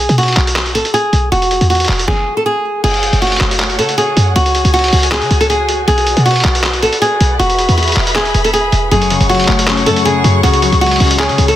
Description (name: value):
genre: hip hop, trap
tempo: 158 BPM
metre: 4/4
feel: half-time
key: F# minor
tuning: A4 = 440 Hz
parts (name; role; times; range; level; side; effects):
- nylon-string guitar; melody; 0.0-11.6 s; F#4 to A4; -14 LUFS; equal; none
- short 808-style bass; bass; 0.0-11.6 s; E1 to C#3; -15 LUFS; equal; none
- lo-fi sampler-style drum kit; drums; 0.1-11.6 s; crash cymbal, handclaps, hi-hat, kick drum, snare drum; -17 LUFS; equal; none
- dark studio string section; sustained chords; 2.8-11.6 s; A3 to C#6; -21 LUFS; left 1 dB; none
- dark concert grand piano; accompaniment; 8.9-11.6 s; F#2 to C#5; -15 LUFS; left 6 dB; none
room: small room ambience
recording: dense, heavily limited modern master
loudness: -10 LUFS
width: side -12 dB against mid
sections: 0.0-2.8 A section; 2.8-11.6 B section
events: stop 2.1-2.8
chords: 0.0 B5; 1.3 E; 2.8 F#m; 4.4 C#sus4; 5.9 Bm; 7.4 E; 8.9 F#m; 10.4 C#sus4